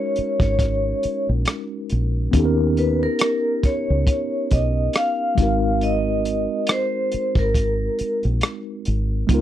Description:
R&B, neo-soul; 69 BPM; 4/4; swing 56% on 16ths; A4 = 440 Hz
vibraphone with medium hard mallets; melody; 0.0-8.2 s; A#4 to E#5; -23 LUFS; equal
mellow tine electric piano; accompaniment; 0.0-9.4 s; G#3 to A#4; -24 LUFS; left 1 dB; medium stereo tremolo
deep dub fingered electric bass; bass; 0.2-9.4 s; G#1 to D#2; -22 LUFS; equal
crunchy breakbeat drum kit; drums; 0.2-9.4 s; hi-hat, kick drum, rim click; -20 LUFS; equal
little or no reverb; dry, close 1970s-style studio recording; -18 LUFS; side -12 dB against mid
0.0-9.4 A section
0.0 F#69; 2.3 D#7b13; 5.4 G#9

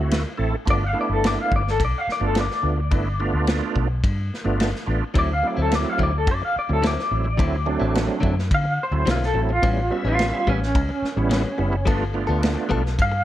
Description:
straight-eighth soul blues; 107 BPM; 4/4; straight; A4 = 441 Hz
bright tonewheel organ; accompaniment; 0.0-12.8 s; F#3 to E5; -26 LUFS; right 4 dB; overdrive, chorus vibrato, slow rotary speaker
vintage muted fingered electric bass; bass; 0.0-13.2 s; F#1 to D3; -24 LUFS; equal
warm soul drum kit; drums; 0.1-13.1 s; kick drum, ride cymbal, snare drum; -25 LUFS; equal
electric guitar through a small old amp; melody; 0.7-13.2 s; C#4 to F5; -24 LUFS; left 1 dB; tremolo
direct-recorded clean electric guitar; stabs; 5.1-13.2 s; A2 to A4; -29 LUFS; left 4 dB; spring reverb
light reverb, small room reverb; -19 LUFS; side -13 dB against mid
0.0-13.2 A section
0.0 D9; 0.7 G9; 5.2 D9; 9.6 A9; 11.9 G9

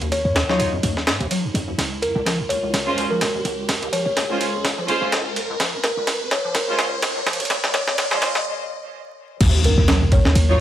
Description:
breakbeat, breaks; 126 BPM; 4/4; swing 57% on 16ths; A4 = 439 Hz
overdriven acid bass; riff; 0.0-10.6 s; C2 to Gb3; -26 LUFS; equal; ensemble chorus, ping-pong delay
warm 808-style bass; bass; 0.0-10.6 s; Ab1 to Gb2; -23 LUFS; equal
breakbeat sampler-style drum kit; drums; 0.0-10.5 s; crash cymbal, kick drum, ride cymbal, snare drum; -22 LUFS; equal; high-pass filter on kick, small room ambience, high-pass filter on cymbals, high-pass filter on snare
riser and impact; sound effects; 0.0-10.6 s; -27 LUFS; equal
kalimba; melody; 0.1-10.3 s; Bb4 to Db5; -26 LUFS; left 1 dB; AM radio sound, vintage 12-bit sampler grit, ping-pong delay
rich studio string section; stabs; 0.5-10.6 s; Gb3 to Db5; -24 LUFS; right 1 dB; vintage 12-bit sampler grit, low-pass filter, ping-pong delay
light reverb; vinyl crackle, high-pass filter; -18 LUFS; side -12 dB against mid
0.0-9.4 A section; 9.4-10.6 B section
build-up 0.0-9.4; riser 0.0-8.5; filter sweep on acid bass 0.0-9.4; filter sweep on string section 0.0-9.4; filter sweep on kalimba 0.0-9.4; filter sweep 0.0-9.4; drum fill 1.8-8.5; break 8.5-9.4; drop 9.4-10.6; impact 9.4-10.6
0.0 Ebm9; 1.8 Dbmaj7; 9.4 Ebm9

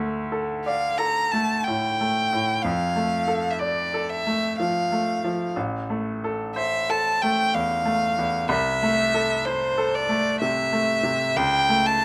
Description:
classical, romantic duo for violin and grand piano; 61 BPM; 3/4; rubato; D minor; A4 = 441 Hz
bright grand piano; accompaniment; 0.0-12.0 s; A1 to D5; -28 LUFS; equal
rich violin; melody; 0.7-12.0 s; C5 to Bb5; -25 LUFS; equal
moderate studio reverb, RT60 0.9 s; -24 LUFS; mono
0.0-12.0 A section
0.0 D5; 2.6 Dm/F; 5.6 Am; 8.5 Am/C; 11.4 A7/C#

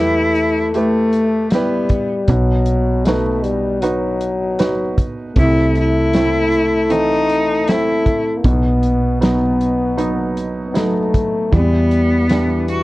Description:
acoustic folk-pop ballad; 78 BPM; 4/4; straight; A4 = 440 Hz
rich cello; melody; 0.0-12.8 s; A3 to F#4; -17 LUFS; equal
mellow French horn; second line; 0.0-12.8 s; E3 to B3; -20 LUFS; left 3 dB
felt-muted upright piano; accompaniment; 0.0-12.8 s; B2 to B4; -21 LUFS; right 3 dB
woody fretless electric bass; bass; 0.0-12.8 s; B1 to E2; -20 LUFS; equal
loose indie drum kit; drums; 0.3-12.8 s; hi-hat, kick drum, snare drum; -19 LUFS; equal
light reverb; worn, warbling old tape, cassette tape, warbly pitch drift; -14 LUFS; side -18 dB against mid
0.0-12.8 A section
0.0 Em; 2.3 B; 5.4 Am/C; 8.4 B; 11.5 Em7

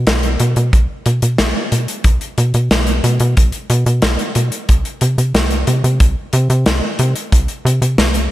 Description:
synthwave; 91 BPM; 4/4; straight; A4 = 440 Hz
tight sequencer bass; bass; 0.0-8.3 s; B1 to C3; -14 LUFS; equal; tube saturation
modern studio drum kit; drums; 0.1-8.3 s; hi-hat, snare drum; -18 LUFS; left 1 dB; slapback echo
kick drum; drums; 0.7-7.5 s; -12 LUFS; equal
light reverb; -13 LUFS; side -15 dB against mid
0.0-8.3 A section

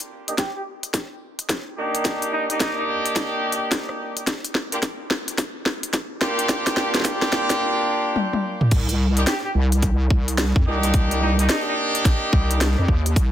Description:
glitch hop; 108 BPM; 4/4; swing 63% on 16ths; C minor; A4 = 440 Hz
drum and bass drum kit; drums; 0.0-13.3 s; crash cymbal, hi-hat, rim click, snare drum, toms; -24 LUFS; equal; small room ambience
brilliant horn section; stabs; 0.3-13.2 s; Bb3 to G4; -24 LUFS; equal; vintage 12-bit sampler grit, sidechain pumping, low-pass filter, ping-pong delay
clear trumpet; melody; 0.4-2.8, 9.3-11.7 s; Eb4 to G4; -30 LUFS; equal; vintage 12-bit sampler grit, low-pass filter, ping-pong delay
electronic kick drum; drums; 0.4-13.3 s; -20 LUFS; equal; high-pass filter on kick, small room ambience
wobble bass; bass; 8.7-13.3 s; C2 to F2; -20 LUFS; equal; chorus, overdrive
moderate plate reverb, RT60 2.0 s; dense, heavily limited modern master; -19 LUFS; side -11 dB against mid
0.0-8.7 A section; 8.7-13.3 B section
build-up 0.0-8.7; drum fill 0.0-7.6, 8.2-8.7; filter sweep on horn section 0.0-8.7; drop 8.7-13.3
0.0 Ebmaj7/Bb; 4.3 Gm7; 8.7 Cm9

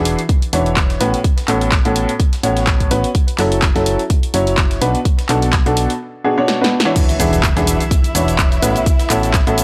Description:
piano house; 126 BPM; 4/4; swing 56% on 16ths; A4 = 441 Hz
clear upright piano; riff; 0.0-9.6 s; A2 to C#5; -20 LUFS; equal; sidechain pumping, analog delay
solid FM bass; bass; 0.0-9.6 s; E1 to B1; -22 LUFS; equal; sidechain pumping
dusty soul sampler-style drum kit; drums; 0.1-9.6 s; hi-hat, snare drum; -35 LUFS; equal
punchy analog drum machine; drums; 0.1-9.6 s; cabasa, crash cymbal, handclaps, hi-hat, snare drum; -23 LUFS; equal
electronic kick drum; drums; 0.3-9.4 s; -18 LUFS; equal
dark studio violin section; sustained chords; 7.0-9.6 s; E4 to E5; -26 LUFS; equal; sidechain pumping
impact; sound effects; 7.0-8.9 s; -26 LUFS; equal
digital ambience; dry, gritty hardware recording, transformer saturation; -16 LUFS; mono
0.0-7.0 A section; 7.0-9.6 B section
drum fill 6.5-7.0; drop 7.0-9.6; impact 7.0-8.9
0.0 E9; 1.0 A69; 3.1 F#m7; 4.8 Bm7; 7.0 E9; 8.6 A69

